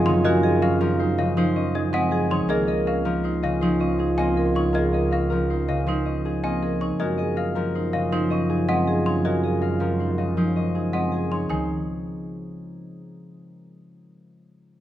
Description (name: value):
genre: classical, minimalist pattern music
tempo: 160 BPM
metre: 6/4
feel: straight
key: Db major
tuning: A4 = 440 Hz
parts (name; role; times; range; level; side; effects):
- Celtic harp; melody; 0.0-13.8 s; Ab4 to F5; -30 LUFS; left 8 dB; none
- mellow French horn; second line; 0.0-11.3 s; F4; -28 LUFS; right 1 dB; none
- concert harp; accompaniment; 0.0-13.8 s; Db3 to Bb3; -26 LUFS; left 2 dB; none
- marimba with medium hard mallets; arpeggios; 0.0-11.7 s; C4 to Bb4; -28 LUFS; right 6 dB; none
- warm double bass; bass; 0.0-11.7 s; Db2 to Gb2; -28 LUFS; right 2 dB; none
- trough xylophone with rubber mallets; arpeggios; 0.1-11.7 s; Eb5 to Db6; -31 LUFS; left 2 dB; none
room: light reverb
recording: dark, warm production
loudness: -20 LUFS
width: side -12 dB against mid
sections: 0.0-11.5 A section; 11.5-13.7 B section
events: none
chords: 0.0 Gbmaj9#11; 2.5 Dbmaj9; 7.0 Gbmaj9#11; 11.5 Dbadd9